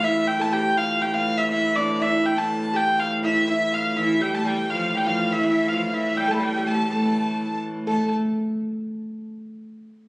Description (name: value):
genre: medieval dance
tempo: 122 BPM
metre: 2/4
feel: straight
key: unclear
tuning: A4 = 437 Hz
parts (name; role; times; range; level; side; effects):
- rich hurdy-gurdy; melody; 0.0-8.1 s; D5 to B5; -23 LUFS; equal; none
- oud; second line; 0.0-8.1 s; D4 to A4; -27 LUFS; right 1 dB; none
- dark hurdy-gurdy; drone; 0.0-7.9 s; A2 to E3; -27 LUFS; equal; none
- bright viola da gamba; second line; 4.0-8.1 s; E3 to A3; -27 LUFS; equal; none
room: wet recital hall reverb, RT60 1.6 s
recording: recorded on a phone in the room, studio ambience, compression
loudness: -20 LUFS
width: side -24 dB against mid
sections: 0.0-7.9 A section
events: none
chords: none